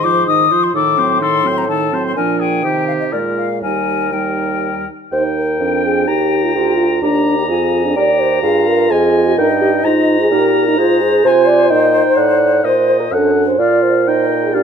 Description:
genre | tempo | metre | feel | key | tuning
quick classical-period movement for wind quintet | 127 BPM | 3/4 | rubato | Eb major | A4 = 439 Hz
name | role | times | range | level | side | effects
hollow concert flute | melody | 0.0-14.6 s | Bb4 to Eb6 | -19 LUFS | left 9 dB | none
warm oboe | second line | 0.0-14.6 s | G4 to Bb5 | -22 LUFS | left 3 dB | none
dark clarinet | accompaniment | 0.0-14.6 s | C4 to Ab4 | -20 LUFS | right 9 dB | none
mellow French horn | accompaniment | 0.0-14.6 s | Eb3 to Eb5 | -16 LUFS | equal | none
mellow bassoon | bass | 0.0-14.6 s | D2 to C3 | -20 LUFS | right 3 dB | none
room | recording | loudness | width
moderate recital hall reverb, RT60 1.6 s | close, detailed microphones | -12 LUFS | side -7 dB against mid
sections
0.0-5.1 A section; 5.1-14.6 A section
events
none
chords
0.0 Fm7/Ab; 0.7 Adim7; 2.2 Bb7; 2.6 Cm; 3.1 Bb7(no3); 3.6 Eb; 6.6 Bb7/D; 8.0 Eb; 9.4 Eb/G; 10.8 Fm7/Ab; 12.2 Adim7; 13.6 Bb; 14.1 Eb/Bb

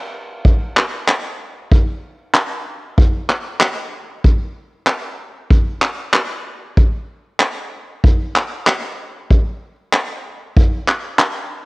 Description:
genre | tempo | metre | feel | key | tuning
pop | 95 BPM | 4/4 | swing 55% on 16ths | none | none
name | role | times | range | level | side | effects
vintage brush drum kit | drums | 0.4-11.4 s | handclaps, kick drum | -15 LUFS | equal | cassette tape
room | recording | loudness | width
light reverb | home recording on cassette | -15 LUFS | side -25 dB against mid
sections
0.0-11.7 A section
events
none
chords
none

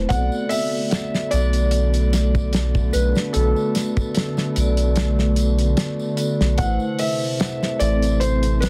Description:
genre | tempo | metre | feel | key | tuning
trip hop | 74 BPM | 4/4 | swing 54% on 16ths | unclear | A4 = 435 Hz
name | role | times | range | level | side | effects
vibraphone with soft mallets | accompaniment | 0.0-8.7 s | A3 to D5 | -28 LUFS | equal | harmonic tremolo
warbly tape-like pad | sustained chords | 0.0-8.7 s | C3 to A3 | -29 LUFS | equal | chorus, built-in reverb, phaser
soft dub sub bass | bass | 0.0-8.7 s | A1 to B1 | -22 LUFS | equal | none
felt-muted upright piano | melody | 0.1-8.7 s | A4 to F#5 | -28 LUFS | equal | vintage 12-bit sampler grit, tape echo
damped 70s drum kit | drums | 0.1-8.7 s | hi-hat, kick drum, snare drum | -26 LUFS | equal | none
tambourine | percussion | 0.1-8.7 s | none | -41 LUFS | equal | none
room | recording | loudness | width
light reverb, small room ambience | dense, heavily limited modern master, vinyl crackle | -20 LUFS | mono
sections
0.0-8.7 A section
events
none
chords
0.1 Bm7; 6.6 Amadd9

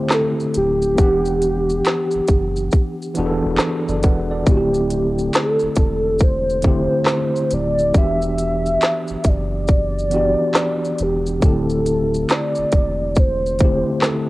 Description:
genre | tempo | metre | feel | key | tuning
lo-fi hip hop | 69 BPM | 4/4 | swing 64% on 16ths | E minor | A4 = 441 Hz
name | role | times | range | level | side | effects
warm velvety synth lead | melody | 0.0-14.3 s | G4 to E5 | -20 LUFS | equal | chorus, low-pass filter, cassette tape
tine electric piano | accompaniment | 0.0-14.3 s | D3 to F#5 | -22 LUFS | equal | medium stereo tremolo, low-pass filter, cassette tape
organic electronic drum kit | drums | 0.1-14.3 s | handclaps, hi-hat, kick drum, shaker, snare drum | -17 LUFS | equal | cassette tape
soft dub sub bass | bass | 0.6-13.8 s | D1 to F#1 | -25 LUFS | equal | none
room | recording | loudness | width
little or no reverb | home recording on cassette | -16 LUFS | side -19 dB against mid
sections
0.0-14.3 A section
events
none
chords
0.0 D7sus4; 1.0 Em9; 4.5 D7sus4; 7.9 Em9; 11.4 D7sus4

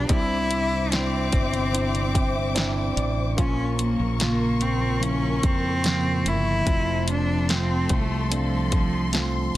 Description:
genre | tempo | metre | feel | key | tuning
pop ballad | 73 BPM | 4/4 | straight | F major | A4 = 440 Hz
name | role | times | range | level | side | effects
rich cello | melody | 0.0-9.5 s | F3 to E4 | -27 LUFS | left 1 dB | none
tine electric piano | accompaniment | 0.0-9.6 s | Bb2 to G5 | -28 LUFS | right 4 dB | none
warm studio string section | sustained chords | 0.0-9.6 s | A4 to D6 | -32 LUFS | left 3 dB | none
nylon-string guitar | arpeggios | 0.0-9.6 s | F2 to D5 | -34 LUFS | left 6 dB | none
mellow fretless electric bass | bass | 0.0-9.6 s | G1 to F2 | -27 LUFS | equal | none
house drum kit | drums | 0.1-9.3 s | hi-hat, kick drum, snare drum | -25 LUFS | equal | none
room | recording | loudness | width
studio reverb | dense, heavily limited modern master | -21 LUFS | side -15 dB against mid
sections
0.0-9.6 A section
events
tine electric piano fill 1.7-3.4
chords
0.1 Cadd9; 3.4 Bbm; 6.7 F

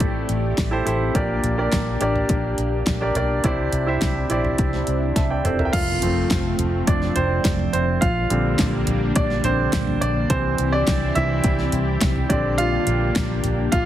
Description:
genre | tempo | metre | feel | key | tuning
piano-driven pop | 105 BPM | 4/4 | straight | F major | A4 = 440 Hz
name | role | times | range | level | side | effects
clear baby grand piano | accompaniment | 0.0-13.9 s | A2 to A5 | -22 LUFS | right 2 dB | none
lush unison pad | sustained chords | 0.0-13.9 s | C3 to G4 | -28 LUFS | left 1 dB | chorus, phaser
vintage muted fingered electric bass | bass | 0.0-13.9 s | E1 to C2 | -24 LUFS | left 1 dB | none
pop drum kit | drums | 0.0-13.9 s | crash cymbal, handclaps, hi-hat, kick drum, snare drum, toms | -24 LUFS | equal | overdrive
impact | sound effects | 5.9-8.0 s | none | -33 LUFS | left 1 dB | none
room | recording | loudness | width
light reverb, digital ambience | heavily compressed radio sound, multiband compression | -18 LUFS | side -12 dB against mid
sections
0.0-5.7 A section; 5.7-13.9 B section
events
drum fill 5.2-5.7; impact 5.7-8.0; grand piano solo 5.7-13.9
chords
0.0 Am7; 1.2 Gm; 3.4 Cadd9; 5.7 F; 8.0 Bb6; 10.3 C; 12.3 Bb6

